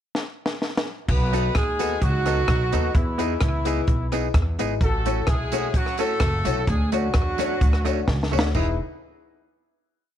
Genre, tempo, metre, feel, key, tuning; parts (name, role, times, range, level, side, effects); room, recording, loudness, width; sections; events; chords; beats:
ska; 129 BPM; 4/4; straight; E major; A4 = 439 Hz
compact cocktail drum kit; drums; 0.1-8.7 s; crash cymbal, hi-hat, kick drum, rim click, snare drum; -24 LUFS; equal; slapback echo
mellow horn section; melody; 1.1-8.8 s; E3 to B4; -27 LUFS; right 1 dB; slapback echo
upright bass; bass; 1.1-8.8 s; E1 to E2; -24 LUFS; equal
semi-hollow electric guitar; accompaniment; 1.3-8.7 s; A3 to A4; -31 LUFS; right 13 dB
dark upright piano; stabs; 1.3-8.7 s; D4 to D#5; -30 LUFS; left 13 dB
tambourine; percussion; 1.3-8.8 s; -42 LUFS; right 14 dB; slapback echo
studio reverb; 1960s-style stereo with parts hard left and right; -20 LUFS; side -10 dB against mid
0.0-1.1 pickup bar; 1.1-8.5 head; 8.5-10.2 final chord
drum fill 0.1-1.1, 8.1-8.5
0.0 N.C.; 1.1 B7; 2.9 Emaj7; 4.8 A6; 6.7 Dmaj7; 8.5 Emaj7
0.15 0.62 | 1.08 1.55 2.02 2.48 | 2.95 3.42 3.88 4.35 | 4.81 5.28 5.75 6.21 | 6.68 7.14 7.61 8.08 | 8.54